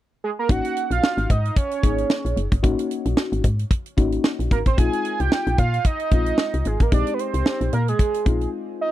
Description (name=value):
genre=early-eighties boogie funk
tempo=112 BPM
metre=4/4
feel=swing 56% on 16ths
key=Ab mixolydian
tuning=A4 = 444 Hz
part: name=fat analog lead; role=melody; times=0.2-8.9 s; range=Ab4 to Ab5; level=-25 LUFS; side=right 5 dB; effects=chorus, phaser, tape echo
part: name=mellow FM electric piano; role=accompaniment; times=0.5-8.9 s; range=Ab3 to Ab4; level=-27 LUFS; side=left 6 dB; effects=chorus
part: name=woody FM bass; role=bass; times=0.5-8.5 s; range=Gb1 to Bb2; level=-23 LUFS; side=equal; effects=none
part: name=tight funk drum kit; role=drums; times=0.5-8.5 s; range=hi-hat, kick drum, snare drum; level=-20 LUFS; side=equal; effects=none
room=studio reverb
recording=dry, close 1970s-style studio recording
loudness=-19 LUFS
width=side -14 dB against mid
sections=0.5-8.9 A section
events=break 8.5-8.9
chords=0.5 Ab9sus4; 4.8 Bb9sus4